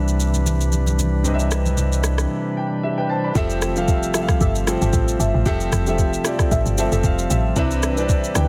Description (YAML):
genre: amapiano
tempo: 114 BPM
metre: 4/4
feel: swing 55% on 16ths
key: unclear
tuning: A4 = 440 Hz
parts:
  - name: warm concert grand piano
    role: accompaniment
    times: 0.0-8.5 s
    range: C3 to B5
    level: -26 LUFS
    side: equal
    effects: none
  - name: pipe organ, flutes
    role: sustained chords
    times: 0.0-8.5 s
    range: C3 to B4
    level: -29 LUFS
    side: equal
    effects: sidechain pumping
  - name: sub bass with octave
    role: bass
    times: 0.0-2.3 s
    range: C2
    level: -22 LUFS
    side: equal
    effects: none
  - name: smooth R&B drum kit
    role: drums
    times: 0.1-8.5 s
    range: kick drum, rim click, shaker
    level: -25 LUFS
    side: equal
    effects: none
  - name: congas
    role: percussion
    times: 0.3-1.9 s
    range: none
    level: -30 LUFS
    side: equal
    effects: none
  - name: deep mellow chord stab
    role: stabs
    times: 3.4-8.5 s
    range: E4 to E5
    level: -31 LUFS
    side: equal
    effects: chorus, phaser, tape echo
  - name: woody log drum bass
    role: bass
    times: 3.4-8.5 s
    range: F1 to D2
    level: -24 LUFS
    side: equal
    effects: none
room: small room ambience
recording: dense, heavily limited modern master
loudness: -20 LUFS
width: mono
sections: 0.0-3.4 A section; 3.4-8.5 B section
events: break 2.3-3.4; grand piano fill 2.3-3.4, 6.5-7.6; drop 3.4-8.5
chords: 0.0 Cmaj9; 3.4 Fmaj9; 7.6 Cmaj9